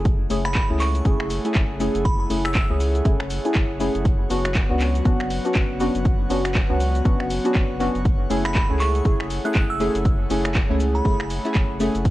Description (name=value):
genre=deep house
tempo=120 BPM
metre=4/4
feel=swing 59% on 16ths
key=F# minor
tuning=A4 = 438 Hz
part: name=deep mellow chord stab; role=stabs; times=0.0-12.0 s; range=A3 to G#4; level=-24 LUFS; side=left 1 dB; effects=chorus, cassette tape, sidechain pumping, analog delay
part: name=round analog bass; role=bass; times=0.0-12.1 s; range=F#1 to C#2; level=-26 LUFS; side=equal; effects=sidechain pumping
part: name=airy breathy pad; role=sustained chords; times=0.1-12.1 s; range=F#3 to F#5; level=-30 LUFS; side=equal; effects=chorus, sidechain pumping
part: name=electronic kick drum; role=drums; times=0.1-12.1 s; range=none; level=-20 LUFS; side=equal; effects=vintage 12-bit sampler grit
part: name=punchy analog drum machine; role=drums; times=0.1-12.1 s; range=cabasa, finger snaps, handclaps, hi-hat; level=-30 LUFS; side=equal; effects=vintage 12-bit sampler grit
part: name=glassy synth bell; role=melody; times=0.5-2.6, 8.4-11.6 s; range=B5 to F#6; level=-29 LUFS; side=right 2 dB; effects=chorus, tape echo
room=little or no reverb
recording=cassette tape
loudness=-19 LUFS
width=side -16 dB against mid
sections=0.0-12.1 A section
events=none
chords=0.1 F#m9; 4.1 Bmadd9/F#; 8.1 F#m9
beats=| 0.05 0.55 1.05 1.55 | 2.05 2.55 3.05 3.55 | 4.05 4.55 5.05 5.55 | 6.05 6.55 7.05 7.55 | 8.05 8.55 9.05 9.55 | 10.05 10.55 11.05 11.55 | 12.05